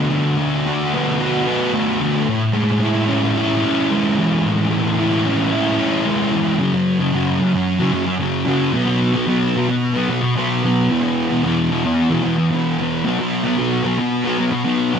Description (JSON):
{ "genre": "rock", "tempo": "112 BPM", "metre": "4/4", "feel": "straight", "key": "F# minor", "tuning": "A4 = 440 Hz", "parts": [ { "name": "fuzz guitar", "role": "solo", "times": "0.0-15.0 s", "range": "E2 to F#4", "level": "-16 LUFS", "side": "equal", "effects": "distortion, lush chorus" } ], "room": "light reverb, digital ambience", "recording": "none", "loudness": "-16 LUFS", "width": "side -7 dB against mid", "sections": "0.0-6.6 A section; 6.6-15.0 B section", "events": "none", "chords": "0.0 D6; 2.3 Amaj7; 6.6 F#5; 8.7 B5; 10.9 E5; 13.0 B5", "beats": "| 0.11 0.65 1.19 1.74 | 2.28 2.82 3.36 3.90 | 4.44 4.98 5.52 6.05 | 6.59 7.13 7.67 8.21 | 8.75 9.28 9.82 10.36 | 10.90 11.43 11.97 12.51 | 13.05 13.59 14.12 14.66" }